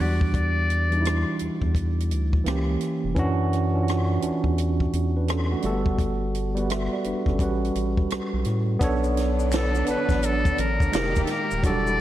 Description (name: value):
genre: R&B, neo-soul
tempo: 85 BPM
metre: 4/4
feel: swing 64% on 16ths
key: B minor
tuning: A4 = 439 Hz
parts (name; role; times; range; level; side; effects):
- trumpet with metal mute; melody; 0.0-1.4, 9.5-12.0 s; A4 to D5; -28 LUFS; left 2 dB; none
- tine electric piano; accompaniment; 0.0-12.0 s; E3 to A5; -26 LUFS; right 2 dB; medium stereo tremolo
- round analog bass; bass; 0.0-12.0 s; Eb1 to A2; -25 LUFS; equal; none
- compact cocktail drum kit; drums; 0.0-11.8 s; hi-hat, kick drum, rim click, snare drum; -28 LUFS; equal; none
- muted studio string section; sustained chords; 8.8-12.0 s; D3 to G4; -31 LUFS; left 2 dB; none
- maracas and finger snaps; percussion; 8.8-12.0 s; none; -43 LUFS; left 7 dB; none
room: moderate lush hall reverb, RT60 2.0 s, studio ambience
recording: dreamy mix soaked in reverb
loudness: -21 LUFS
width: side -13 dB against mid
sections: 0.0-8.8 A section; 8.8-12.0 B section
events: none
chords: 0.0 Em9; 2.5 C#dim7; 3.2 Dmaj9; 5.6 Gmaj9; 7.4 A13; 8.8 Bm9; 10.9 Fm11